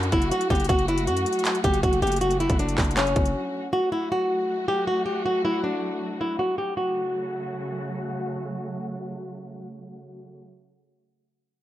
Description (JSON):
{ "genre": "hip hop, trap", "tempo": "158 BPM", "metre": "4/4", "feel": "half-time", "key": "F# phrygian", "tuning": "A4 = 441 Hz", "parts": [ { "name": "flamenco guitar", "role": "melody", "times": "0.0-7.9 s", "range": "C#4 to G4", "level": "-24 LUFS", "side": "equal", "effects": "low-pass filter" }, { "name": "dark symphonic string section", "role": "sustained chords", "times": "0.0-10.4 s", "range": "C#3 to F#4", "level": "-31 LUFS", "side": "equal", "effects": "low-pass filter" }, { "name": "growling 808-style bass", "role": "bass", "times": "0.0-3.3 s", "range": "F#1 to F#2", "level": "-27 LUFS", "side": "equal", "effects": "none" }, { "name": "trap drum kit", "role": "drums", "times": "0.0-3.3 s", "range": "handclaps, hi-hat, kick drum", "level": "-25 LUFS", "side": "equal", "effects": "none" } ], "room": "light reverb, studio reverb", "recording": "none", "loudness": "-22 LUFS", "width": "side -13 dB against mid", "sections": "0.0-3.7 A section; 3.7-6.8 B section; 6.8-9.8 C section", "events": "break 3.4-3.7", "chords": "0.0 F#m" }